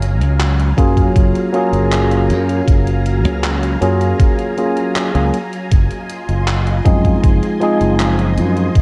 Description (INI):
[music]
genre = vaporwave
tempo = 79 BPM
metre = 4/4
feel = straight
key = Gb lydian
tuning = A4 = 441 Hz
[part]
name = soft string machine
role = sustained chords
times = 0.0-8.8 s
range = Gb3 to C6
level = -28 LUFS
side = equal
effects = ensemble chorus
[part]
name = modern bright fingered electric bass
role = bass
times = 0.0-8.8 s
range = Gb1 to Gb2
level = -18 LUFS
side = equal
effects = none
[part]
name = detuned 8-bit digital drum machine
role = drums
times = 0.0-8.8 s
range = handclaps, hi-hat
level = -28 LUFS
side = equal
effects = gated reverb
[part]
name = tine electric piano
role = accompaniment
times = 0.8-8.7 s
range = F3 to Ab4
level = -20 LUFS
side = equal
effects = lush chorus, tape echo
[part]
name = electronic kick drum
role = drums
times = 0.8-8.8 s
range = none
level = -15 LUFS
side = equal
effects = none
[sound]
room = digital ambience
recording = cassette tape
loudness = -15 LUFS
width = mono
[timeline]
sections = 0.0-8.8 A section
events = none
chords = 0.0 Gbmaj9; 5.7 Fm7/Gb